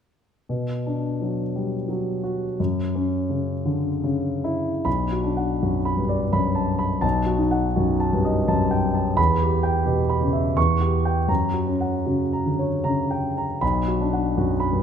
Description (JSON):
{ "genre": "classical, romantic character piece for solo piano", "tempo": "70-90 BPM", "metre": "3/4", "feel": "rubato", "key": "B minor", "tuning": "A4 = 438 Hz", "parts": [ { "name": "warm concert grand piano", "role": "solo", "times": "0.5-14.8 s", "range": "B1 to C#6", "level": "-20 LUFS", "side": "equal", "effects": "none" } ], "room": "moderate scoring stage reverb, RT60 1.7 s", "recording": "none", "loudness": "-20 LUFS", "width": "side -8 dB against mid", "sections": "0.5-4.9 A section; 4.9-14.8 B section", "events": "none", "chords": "0.5 Bm; 2.6 F#5; 4.9 Bm; 7.0 B7; 9.2 Em; 10.6 C#dim/E; 11.3 F#; 13.6 Bm", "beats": "| 0.48 1.21 1.89 | 2.59 3.31 4.04 | 4.86 5.62 6.33 | 7.04 7.76 8.48 | 9.18 9.85 10.57 | 11.29 12.06 12.84 | 13.62 14.37" }